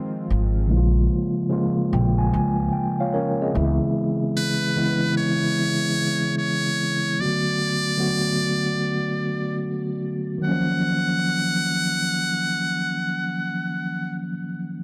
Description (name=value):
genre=hip hop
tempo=74 BPM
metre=4/4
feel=swing 65% on 16ths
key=Eb minor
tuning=A4 = 442 Hz
part: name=mellow tine electric piano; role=accompaniment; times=0.0-14.8 s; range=Db3 to Ab5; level=-25 LUFS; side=equal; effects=cassette tape
part: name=warm analog pad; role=sustained chords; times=0.0-0.7 s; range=Eb3 to F4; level=-39 LUFS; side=equal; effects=chorus, tremolo
part: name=upright bass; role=bass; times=0.3-3.8 s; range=Ab1 to Db2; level=-24 LUFS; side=equal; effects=none
part: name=trumpet with metal mute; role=melody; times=4.4-14.2 s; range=Cb5 to Gb5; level=-27 LUFS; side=equal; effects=analog delay
room=light reverb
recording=dry, gritty hardware recording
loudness=-23 LUFS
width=mono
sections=0.0-10.4 A section; 10.4-13.7 B section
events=break 0.0-3.9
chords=0.0 Fm7; 0.7 Bbm7; 3.5 Dbm7; 7.2 Bm7; 10.4 Ebm9